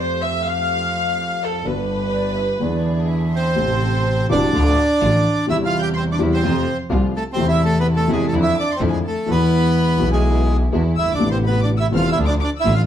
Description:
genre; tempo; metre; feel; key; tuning
tango; 126 BPM; 4/4; rubato; A harmonic minor from 3.6 s; A4 = 439 Hz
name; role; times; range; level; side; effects
warm chamber violin section; second line; 0.0-12.8 s; A4 to G6; -26 LUFS; left 1 dB; none
dark grand piano; accompaniment; 0.0-12.8 s; E1 to G#4; -22 LUFS; left 3 dB; none
dark studio string section; stabs; 0.0-12.8 s; F3 to A4; -31 LUFS; right 1 dB; none
clear double bass; bass; 0.0-12.8 s; E1 to F2; -21 LUFS; right 1 dB; none
breathy mellow concert flute; second line; 2.1-3.6 s; D5 to E5; -30 LUFS; right 6 dB; none
bandoneon; melody; 3.4-12.8 s; G#3 to G5; -21 LUFS; right 2 dB; none
room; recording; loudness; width
wet studio reverb, RT60 0.7 s; heard from further back in the room; -16 LUFS; side -10 dB against mid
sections
0.0-3.6 A section; 3.6-12.9 B section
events
violin section solo 0.0-3.6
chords
0.0 Fadd9; 1.6 G; 2.6 E7; 3.6 Amadd9; 4.5 Dm; 5.5 C/E; 6.4 F; 7.4 Am/E; 8.3 Dmadd9/F; 9.3 E; 11.2 Amadd9; 12.2 Dm

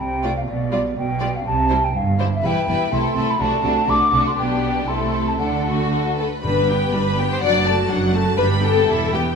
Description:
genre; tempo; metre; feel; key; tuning
quick classical-period movement for symphony orchestra; 122 BPM; 2/4; rubato; G major; A4 = 440 Hz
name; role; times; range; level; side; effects
mellow hollow silver concert flute; second line; 0.0-6.2 s; D5 to D6; -22 LUFS; equal; none
clear studio double bass section; bass; 0.0-9.3 s; E1 to D2; -26 LUFS; right 4 dB; none
rich studio cello section; bass; 0.0-9.3 s; E2 to D3; -24 LUFS; right 3 dB; none
rich studio violin section; melody; 0.2-9.4 s; F#4 to B5; -28 LUFS; left 2 dB; none
rich studio violin section; second line; 0.2-9.2 s; D4 to D5; -23 LUFS; left 5 dB; none
rich chamber viola section; accompaniment; 0.2-9.4 s; F#3 to G4; -25 LUFS; right 1 dB; none
timpani; percussion; 6.4-7.2 s; G2; -29 LUFS; equal; none
room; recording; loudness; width
wet scoring stage reverb, RT60 1.6 s; minimal, uncompressed stereo recording; -17 LUFS; side -6 dB against mid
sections
0.0-6.4 A section; 6.4-9.4 B section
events
none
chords
0.5 G7/B; 1.5 C; 2.4 Em; 2.9 Am/C; 4.4 G/B; 4.9 Am/C; 5.4 D; 6.4 G; 7.4 D/F#; 8.4 G

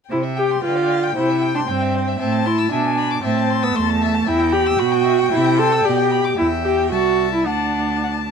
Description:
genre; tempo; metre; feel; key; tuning
quick classical-period movement for string quartet; 115 BPM; 2/4; rubato; C major; A4 = 440 Hz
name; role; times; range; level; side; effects
warm violin; melody; 0.1-8.3 s; G5 to A5; -26 LUFS; left 11 dB; none
warm violin; second line; 0.1-8.1 s; B4 to E6; -26 LUFS; left 4 dB; none
warm viola; accompaniment; 0.1-8.3 s; A3 to A4; -18 LUFS; right 1 dB; none
rich cello; bass; 0.1-8.3 s; C2 to D3; -23 LUFS; right 5 dB; none
room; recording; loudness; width
light reverb; minimal, uncompressed stereo recording; -16 LUFS; side -6 dB against mid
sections
0.1-8.3 A section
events
none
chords
0.1 C; 0.6 G7/D; 1.2 C; 2.2 Am; 2.7 E7/B; 3.2 Am; 4.3 Em; 5.3 C; 5.8 G/B; 6.4 Em; 6.9 Am/C; 7.5 D

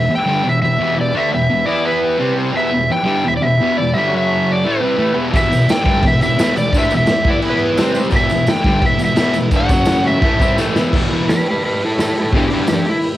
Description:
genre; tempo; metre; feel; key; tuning
garage rock duo or trio; 172 BPM; 4/4; straight; E minor; A4 = 440 Hz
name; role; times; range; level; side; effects
overdriven slide guitar; melody; 0.0-13.0 s; D4 to G5; -18 LUFS; equal; cassette tape
combo organ; sustained chords; 0.0-13.2 s; C4 to G5; -27 LUFS; right 1 dB; cassette tape
thick fuzz guitar; riff; 0.0-12.7 s; E2 to E4; -17 LUFS; equal; distortion, cassette tape
raw garage drum kit; drums; 5.3-13.1 s; crash cymbal, hi-hat, kick drum, snare drum; -18 LUFS; equal; cassette tape
tambourine; percussion; 5.4-12.8 s; none; -36 LUFS; right 4 dB; none
room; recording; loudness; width
little or no reverb; home recording on cassette; -13 LUFS; side -14 dB against mid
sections
0.0-10.9 A section; 10.9-13.2 B section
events
drum fill 10.6-10.9; electric slide guitar solo 10.9-13.2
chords
0.0 Em; 2.2 C5; 2.6 Em; 4.1 F#5; 4.6 Em; 7.8 C5; 8.1 Em; 9.7 F#5; 10.2 Em

